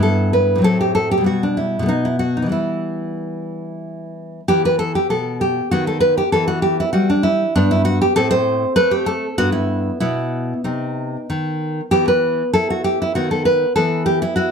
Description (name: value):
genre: classical, baroque-style dance for nylon-string guitar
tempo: 90-100 BPM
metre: 3/4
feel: rubato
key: E minor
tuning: A4 = 438 Hz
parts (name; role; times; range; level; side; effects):
- nylon-string guitar; solo; 0.0-14.5 s; G2 to C5; -16 LUFS; equal; none
room: light reverb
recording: none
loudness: -16 LUFS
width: side -6 dB against mid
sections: 0.0-4.5 A section; 4.5-14.5 B section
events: none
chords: 0.0 Em/G; 0.7 F#dim/A; 1.3 Em/B; 1.9 B; 2.5 Em; 4.5 E5; 5.7 B/D#; 6.3 Em; 7.6 Gmaj7; 8.2 Am; 9.4 Em/G; 10.0 B; 11.9 E5; 13.2 B/D#; 13.8 E5